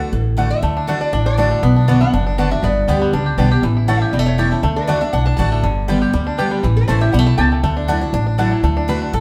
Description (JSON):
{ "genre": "bluegrass", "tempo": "240 BPM", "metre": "4/4", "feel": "straight", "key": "D major", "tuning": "A4 = 443 Hz", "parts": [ { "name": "lap resonator guitar", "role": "second line", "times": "0.0-8.1 s", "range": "A4 to A5", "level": "-26 LUFS", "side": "equal", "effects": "none" }, { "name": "picked steel-string acoustic guitar", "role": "accompaniment", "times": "0.0-9.2 s", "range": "E2 to G4", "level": "-22 LUFS", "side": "equal", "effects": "none" }, { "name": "upright bass", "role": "bass", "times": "0.1-9.2 s", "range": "E1 to D2", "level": "-20 LUFS", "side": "equal", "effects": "none" }, { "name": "mandolin", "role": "stabs", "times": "0.4-8.5 s", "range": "A3 to A5", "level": "-28 LUFS", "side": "equal", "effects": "none" }, { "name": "bluegrass banjo", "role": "melody", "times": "0.6-9.2 s", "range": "D3 to B4", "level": "-25 LUFS", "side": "equal", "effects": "plate reverb" } ], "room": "wet studio reverb, RT60 0.9 s", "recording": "heard from further back in the room", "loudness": "-16 LUFS", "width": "mono", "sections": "0.0-8.6 A section", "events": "resonator guitar played with a steel bar solo 0.0-8.6", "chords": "0.0 D; 1.6 Bm; 2.6 G; 3.6 A; 4.6 D; 5.6 G; 6.6 A; 7.6 Dadd9; 8.6 D" }